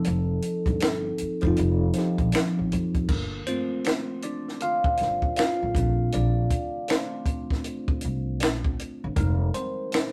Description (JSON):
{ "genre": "R&B, neo-soul", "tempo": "79 BPM", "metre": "4/4", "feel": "swing 62% on 16ths", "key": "unclear", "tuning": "A4 = 440 Hz", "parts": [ { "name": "bell-like tine electric piano", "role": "accompaniment", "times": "0.0-10.1 s", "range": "F3 to F5", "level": "-30 LUFS", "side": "equal", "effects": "phaser" }, { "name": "compact cocktail drum kit", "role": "drums", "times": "0.0-10.1 s", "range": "crash cymbal, finger snaps, hi-hat, kick drum, snare drum", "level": "-29 LUFS", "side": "equal", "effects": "none" }, { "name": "upright bass", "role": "bass", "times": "0.1-9.5 s", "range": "F1 to F2", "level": "-29 LUFS", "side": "equal", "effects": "none" } ], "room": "moderate studio reverb, RT60 0.7 s", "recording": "rough rehearsal-room recording", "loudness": "-26 LUFS", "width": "mono", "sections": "0.0-3.1 A section; 3.1-10.1 B section", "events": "tine electric piano solo 3.1-10.1", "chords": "0.0 F7; 3.1 Gm9 (rootless); 9.2 Fm9" }